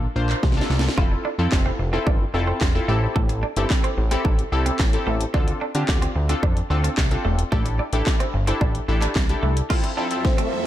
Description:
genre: dance-pop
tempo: 110 BPM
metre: 4/4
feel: straight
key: unclear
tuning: A4 = 440 Hz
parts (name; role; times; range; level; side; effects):
- funky polysynth comp; accompaniment; 0.0-10.7 s; Bb3 to C5; -26 LUFS; left 2 dB; chorus, sidechain pumping
- fat analog bass; bass; 0.0-9.6 s; E1 to D3; -23 LUFS; equal; sidechain pumping
- house drum kit; drums; 0.3-10.5 s; crash cymbal, handclaps, hi-hat, kick drum, snare drum; -22 LUFS; equal; none
- twelve-string electric guitar; riff; 1.0-10.5 s; A3 to F4; -31 LUFS; right 4 dB; wide subtle chorus
- supersaw chords; sustained chords; 9.7-10.7 s; F2 to E5; -30 LUFS; right 2 dB; phaser, sidechain pumping
- riser; sound effects; 10.1-10.7 s; none; -31 LUFS; right 1 dB; none
- soft octave-layered synth lead; melody; 10.2-10.7 s; C5; -27 LUFS; left 2 dB; chorus
room: light reverb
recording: dark, warm production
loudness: -19 LUFS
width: side -13 dB against mid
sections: 0.0-9.7 A section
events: drum fill 0.4-1.0, 9.7-10.7; riser 10.1-10.7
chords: 0.0 Bbmaj7; 1.0 Fmaj7; 2.9 Am7; 5.3 Dm7; 7.5 A7sus4; 9.7 Fmaj7

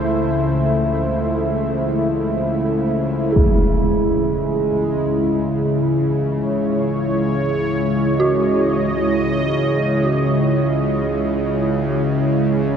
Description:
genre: dark ambient drone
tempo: free time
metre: none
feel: none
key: C# harmonic minor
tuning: A4 = 441 Hz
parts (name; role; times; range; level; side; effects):
- sweeping resonant pad; sustained chords; 0.0-12.8 s; G#3 to E5; -20 LUFS; right 1 dB; chorus
- bowed-like drone; drone; 0.0-12.8 s; C#2 to C#3; -21 LUFS; left 2 dB; built-in reverb
- quartz singing bowl; texture; 3.3-12.8 s; G#4; -27 LUFS; right 6 dB; none
- impact; percussion; 3.4-3.6 s; none; -21 LUFS; equal; low-pass filter on sfx
- dark detuned synth bell; arpeggios; 8.2-12.8 s; F#4; -24 LUFS; equal; chorus, diffuse ambient delay
room: wet huge ambient reverb, RT60 8.2 s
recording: dark, warm production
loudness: -16 LUFS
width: side -7 dB against mid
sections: 0.0-3.4 A section; 3.4-12.8 B section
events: none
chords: 0.0 Am; 3.4 C#madd9

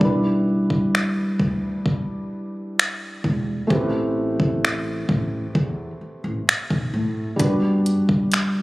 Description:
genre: contemporary R&B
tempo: 65 BPM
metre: 4/4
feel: straight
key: E minor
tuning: A4 = 440 Hz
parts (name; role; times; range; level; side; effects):
- felt-muted upright piano; accompaniment; 0.0-8.6 s; G3 to B4; -23 LUFS; equal; none
- upright bass; bass; 0.0-8.6 s; E1 to A2; -25 LUFS; equal; none
- smooth R&B drum kit; drums; 0.0-8.5 s; finger snaps, hi-hat, kick drum; -22 LUFS; equal; none
room: small room ambience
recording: recorded on a phone in the room, club reverb, compression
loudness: -19 LUFS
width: side -20 dB against mid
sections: 0.0-8.6 A section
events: break 0.0-7.4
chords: 0.0 Em7/B; 3.7 Am9; 7.4 Gmaj7

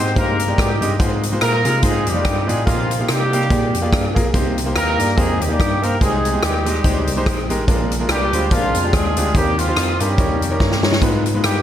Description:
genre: uptempo gospel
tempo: 144 BPM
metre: 4/4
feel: swing 56% on 8ths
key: Eb major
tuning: A4 = 440 Hz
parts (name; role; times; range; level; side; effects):
- warm horn section; melody; 0.0-11.6 s; F3 to C5; -21 LUFS; equal; slapback echo
- clear grand piano; accompaniment; 0.0-11.6 s; Ab2 to F5; -23 LUFS; equal; slapback echo
- bell-like tine electric piano; bass; 0.0-11.6 s; A1 to C3; -22 LUFS; equal; analog chorus
- swinging big-band drum kit; drums; 0.1-11.6 s; hi-hat, kick drum, rim click, snare drum; -20 LUFS; equal; none
- percussive tonewheel organ; sustained chords; 11.0-11.6 s; Ab3 to Cb5; -24 LUFS; left 1 dB; fast rotary speaker
room: moderate concert hall reverb, RT60 2.1 s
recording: big arena sound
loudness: -15 LUFS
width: side -10 dB against mid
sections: 0.0-11.6 A section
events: drum fill 10.6-11.0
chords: 0.0 Abmaj7; 1.0 Fm7/Ab; 2.7 Eb/Bb; 3.5 Bb7; 4.3 Cm7; 6.0 Abmaj7/C; 7.7 Bb7; 9.4 Eb6; 10.2 Eb7; 11.0 Abm6

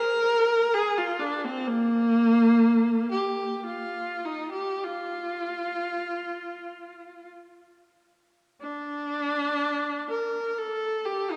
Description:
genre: classical, free, expressive piece for unaccompanied viola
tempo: 38-68 BPM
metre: 3/4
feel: rubato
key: Bb major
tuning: A4 = 439 Hz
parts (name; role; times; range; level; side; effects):
- rich viola; solo; 0.0-11.4 s; Bb3 to Bb4; -26 LUFS; equal; none
room: wet church reverb, RT60 2.8 s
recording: none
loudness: -26 LUFS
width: mono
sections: 0.0-8.6 A section; 8.6-11.4 B section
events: none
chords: none

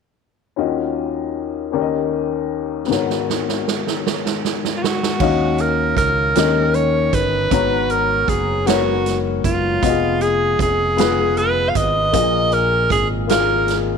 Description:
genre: slow gospel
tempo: 52 BPM (dotted quarters)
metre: 6/8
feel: straight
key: Eb minor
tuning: A4 = 440 Hz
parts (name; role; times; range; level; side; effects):
- warm upright piano; accompaniment; 0.6-14.0 s; Ab1 to Bb5; -20 LUFS; left 11 dB; none
- swinging big-band drum kit; drums; 2.9-13.9 s; crash cymbal, hi-hat, kick drum, snare drum; -23 LUFS; right 8 dB; none
- edgy alto saxophone; melody; 4.8-13.8 s; F4 to F5; -19 LUFS; right 2 dB; none
- fingered electric bass; bass; 5.2-14.0 s; F1 to Eb2; -23 LUFS; right 2 dB; none
room: light reverb, small room reverb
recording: 1960s-style stereo with parts hard left and right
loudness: -16 LUFS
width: side -6 dB against mid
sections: 0.6-5.2 A section; 5.2-14.0 B section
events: drum fill 2.9-5.2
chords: 0.6 Ebm9; 1.7 Eb7; 2.9 Abm11; 5.2 Ebm9; 6.4 Eb7; 7.5 Abm11; 9.8 Fm7b5; 12.1 Bb7sus4

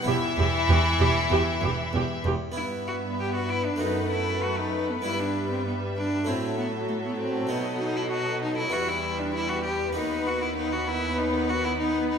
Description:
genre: classical, baroque-style concerto movement with solo episodes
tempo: 97 BPM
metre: 4/4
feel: straight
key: E minor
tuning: A4 = 442 Hz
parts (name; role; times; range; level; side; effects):
- rich chamber violin section; melody; 0.0-12.2 s; D#5 to F#5; -35 LUFS; left 3 dB; none
- harpsichord; accompaniment; 0.0-12.2 s; D#2 to F#4; -35 LUFS; equal; none
- clear cello; melody; 0.1-12.2 s; E3 to G4; -29 LUFS; left 2 dB; none
- rich studio violin section; second line; 0.1-12.2 s; E4 to B4; -32 LUFS; left 4 dB; none
- warm studio viola section; accompaniment; 0.1-12.2 s; F#3 to G4; -31 LUFS; right 2 dB; none
- clear symphonic cello section; bass; 0.1-12.2 s; D#2 to B2; -31 LUFS; right 3 dB; none
- rich chamber double bass section; bass; 0.1-2.3 s; E1; -31 LUFS; right 4 dB; none
room: wet recital hall reverb, RT60 1.4 s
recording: minimal, uncompressed stereo recording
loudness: -24 LUFS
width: side -7 dB against mid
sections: 0.0-2.6 A section; 2.6-12.2 B section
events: none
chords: 0.1 Em; 2.6 Em/G; 3.8 B5/F#; 5.0 Em/G; 6.3 Am6; 7.5 B7; 8.7 Em; 10.0 B/D#

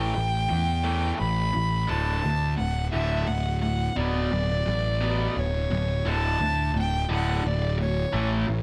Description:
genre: post-rock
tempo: 86 BPM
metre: 3/4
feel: straight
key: D major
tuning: A4 = 442 Hz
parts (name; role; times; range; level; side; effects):
- dark violin; melody; 0.0-8.5 s; C#5 to B5; -31 LUFS; equal; analog delay
- raw garage guitar; riff; 0.0-8.6 s; D2 to B3; -32 LUFS; equal; overdrive
- fuzz picked electric bass; bass; 0.0-8.6 s; D1 to E2; -28 LUFS; equal; overdrive
room: light reverb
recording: none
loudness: -26 LUFS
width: mono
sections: 0.0-8.6 A section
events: build-up 0.0-8.6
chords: 0.0 A5; 1.9 D5; 4.0 Bm7/D; 6.1 D5

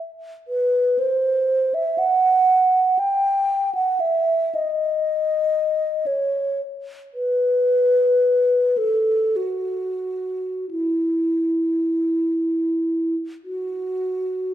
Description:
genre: classical, free, expressive piece for unaccompanied alto flute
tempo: 35-61 BPM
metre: 3/4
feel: rubato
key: E minor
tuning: A4 = 440 Hz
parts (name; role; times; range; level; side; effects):
- mellow hollow wooden-headed alto flute; solo; 0.5-14.5 s; E4 to G5; -19 LUFS; equal; none
room: wet recital hall reverb, RT60 1.7 s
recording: dark, warm production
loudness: -18 LUFS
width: side -11 dB against mid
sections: 0.0-14.5 A section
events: none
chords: none

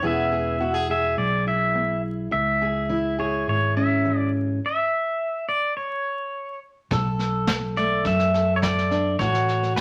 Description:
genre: acoustic folk duo or small band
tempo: 105 BPM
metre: 4/4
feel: straight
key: B dorian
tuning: A4 = 441 Hz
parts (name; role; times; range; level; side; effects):
- pedal steel guitar; second line; 0.0-9.8 s; B4 to E5; -26 LUFS; equal; none
- fingerpicked steel-string acoustic guitar; accompaniment; 0.0-9.8 s; F#2 to A4; -28 LUFS; equal; none
- fingered electric bass; bass; 0.0-9.8 s; E1 to F#2; -29 LUFS; equal; none
- vintage brush drum kit; drums; 6.9-9.8 s; kick drum, snare drum; -31 LUFS; equal; none
room: wet studio reverb, RT60 0.7 s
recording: vinyl crackle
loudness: -23 LUFS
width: mono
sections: 0.0-6.9 A section; 6.9-9.8 B section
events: pedal steel guitar solo 0.0-6.9, 6.9-9.8; stop 4.6-6.9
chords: 0.0 E; 2.3 C#m; 4.6 N.C.; 6.9 Bm7; 9.2 F#m/A

